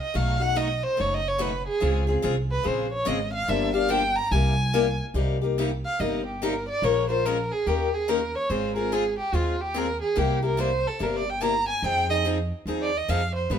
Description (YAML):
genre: acoustic string swing (jazz manouche)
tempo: 144 BPM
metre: 4/4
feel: swing 63% on 8ths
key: C minor from 5.2 s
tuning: A4 = 440 Hz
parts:
  - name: warm violin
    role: melody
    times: 0.0-13.6 s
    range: F4 to Bb5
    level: -26 LUFS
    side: right 2 dB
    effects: none
  - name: picked steel-string acoustic guitar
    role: accompaniment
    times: 0.1-13.6 s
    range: B2 to Bb4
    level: -27 LUFS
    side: left 5 dB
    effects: none
  - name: upright bass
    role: bass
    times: 0.1-13.6 s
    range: F#1 to G2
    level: -28 LUFS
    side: right 1 dB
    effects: none
room: moderate stone room reverb, RT60 1.1 s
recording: band playing live in one room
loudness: -22 LUFS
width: side -8 dB against mid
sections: 0.0-5.2 A section; 5.2-13.6 A section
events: violin solo 0.0-5.2, 5.2-13.6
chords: 0.1 B7; 1.8 Dbmaj7; 3.5 Gm7; 4.3 C7b13; 5.2 Cm7; 6.8 Bbm7; 7.7 Eb7; 8.5 Ab6; 10.2 C7; 11.8 Fm7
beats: | 0.15 0.56 0.98 1.40 | 1.81 2.23 2.65 3.07 | 3.48 3.90 4.32 4.74 | 5.15 5.57 5.99 6.41 | 6.82 7.24 7.66 8.08 | 8.50 8.91 9.33 9.75 | 10.17 10.59 11.01 11.42 | 11.84 12.26 12.68 13.10 | 13.52